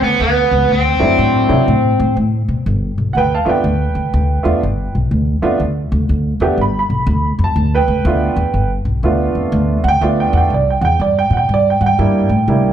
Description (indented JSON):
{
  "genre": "electric blues shuffle",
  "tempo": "122 BPM",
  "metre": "4/4",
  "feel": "swing 64% on 8ths",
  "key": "G mixolydian",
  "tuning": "A4 = 439 Hz",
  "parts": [
    { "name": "overdriven semi-hollow guitar", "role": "melody", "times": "0.0-2.1 s", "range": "B3 to C4", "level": "-14 LUFS", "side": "equal", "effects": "slapback echo" },
    { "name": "upright bass", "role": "bass", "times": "0.0-12.7 s", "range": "G1 to C3", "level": "-15 LUFS", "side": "equal", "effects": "none" },
    { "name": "clear upright piano", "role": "accompaniment", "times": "1.0-12.7 s", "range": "F#3 to B5", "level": "-16 LUFS", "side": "right 3 dB", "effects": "slapback echo" }
  ],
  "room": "small room ambience",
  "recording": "live gig heard through the venue's PA, club reverb",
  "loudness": "-13 LUFS",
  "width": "side -10 dB against mid",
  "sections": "0.0-2.7 A section; 2.7-12.7 B section",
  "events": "none",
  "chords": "0.0 G (rootless); 0.7 D7; 2.7 G7; 10.5 C7"
}